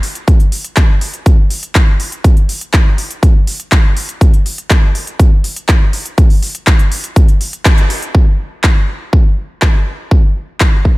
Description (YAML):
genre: house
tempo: 122 BPM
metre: 4/4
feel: straight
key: none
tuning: none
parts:
  - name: big-room dance drum kit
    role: drums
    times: 0.0-10.7 s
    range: handclaps, hi-hat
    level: -18 LUFS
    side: equal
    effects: sidechain pumping on hats
  - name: electronic kick drum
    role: drums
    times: 0.3-10.9 s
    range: none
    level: -9 LUFS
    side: equal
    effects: none
room: little or no reverb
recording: none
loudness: -10 LUFS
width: side -21 dB against mid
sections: 0.0-8.1 A section; 8.1-11.0 B section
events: band accent 7.7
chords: none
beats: | 0.28 0.77 1.26 1.75 | 2.24 2.74 3.23 3.72 | 4.21 4.70 5.20 5.69 | 6.18 6.67 7.16 7.65 | 8.15 8.64 9.13 9.62 | 10.11 10.61